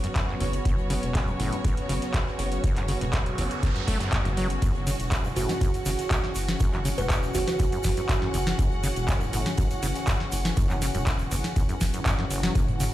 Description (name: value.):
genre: acid house.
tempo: 121 BPM.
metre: 4/4.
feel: straight.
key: unclear.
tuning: A4 = 440 Hz.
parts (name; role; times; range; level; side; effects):
warm analog pad; sustained chords; 0.0-12.9 s; C#3 to F#4; -34 LUFS; equal; chorus, sidechain pumping.
acid bass, saw; riff; 0.0-12.8 s; F#1 to A3; -32 LUFS; equal; ping-pong delay.
booming analog drum machine; drums; 0.0-12.9 s; handclaps, hi-hat, snare drum, toms; -31 LUFS; equal; none.
rich symphonic string section; texture; 0.0-12.9 s; C#4 to F#5; -35 LUFS; equal; sidechain pumping.
electronic kick drum; drums; 0.2-12.7 s; none; -26 LUFS; equal; none.
open jazz drum kit; drums; 0.2-12.9 s; hi-hat, snare drum; -44 LUFS; right 2 dB; none.
round analog bass; bass; 0.4-12.9 s; E1 to F#1; -30 LUFS; equal; sidechain pumping.
noise sweep; sound effects; 3.0-4.6 s; none; -36 LUFS; right 3 dB; none.
tube shaker; percussion; 4.6-12.9 s; none; -40 LUFS; right 4 dB; none.
kalimba; melody; 5.4-7.6 s; F#4 to B4; -32 LUFS; right 4 dB; digital delay.
room: light reverb.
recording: played on a big sound system in a bare room, stone room reverb.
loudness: -23 LUFS.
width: side -14 dB against mid.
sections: 0.0-12.9 A section.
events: noise sweep 3.0-4.6.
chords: 0.0 F#5.